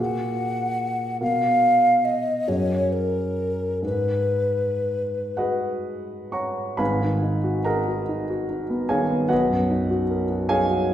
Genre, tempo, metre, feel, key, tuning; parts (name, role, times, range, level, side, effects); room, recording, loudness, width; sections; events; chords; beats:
classical, impressionist duo for flute and grand piano; 37-51 BPM (dotted quarters); 6/8; rubato; G# dorian; A4 = 440 Hz
mellow hollow concert flute; melody; 0.0-5.4 s; A#4 to F#5; -22 LUFS; left 1 dB
warm concert grand piano; accompaniment; 0.0-10.9 s; G#1 to C#6; -23 LUFS; equal
wet recital hall reverb, RT60 1.4 s; heard from further back in the room; -21 LUFS; side -11 dB against mid
0.0-6.8 A section; 6.8-10.9 B section
0.0 F#add9/A#; 1.2 B5; 2.5 F#add9; 3.8 G#m7; 6.8 G#m9; 9.3 Bmaj7
| 1.21 2.47 | 3.83 5.39 | 6.80 8.10 | 9.31 10.53